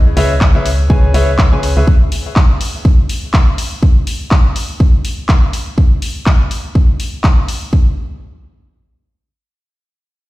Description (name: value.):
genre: piano house.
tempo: 123 BPM.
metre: 4/4.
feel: swing 56% on 16ths.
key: C# minor.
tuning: A4 = 440 Hz.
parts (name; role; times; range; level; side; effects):
bright upright piano; riff; 0.2-1.9 s; C#4 to G#5; -19 LUFS; left 1 dB; sidechain pumping, low-pass filter, ping-pong delay.
solid FM bass; bass; 0.2-1.8 s; C#2; -13 LUFS; equal; sidechain pumping.
house drum kit; drums; 0.2-7.6 s; handclaps, hi-hat; -21 LUFS; left 1 dB; none.
electronic kick drum; drums; 0.4-7.8 s; none; -10 LUFS; equal; none.
room: digital ambience.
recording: played on a big sound system in a bare room, stone room reverb.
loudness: -11 LUFS.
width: side -18 dB against mid.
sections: 0.0-7.7 A section; 7.7-10.3 B section.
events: none.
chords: 0.0 C#m7; 1.9 N.C..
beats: 0.41 0.90 1.39 | 1.87 2.36 2.85 3.34 | 3.83 4.31 4.80 5.29 | 5.78 6.26 6.75 7.24 | 7.73.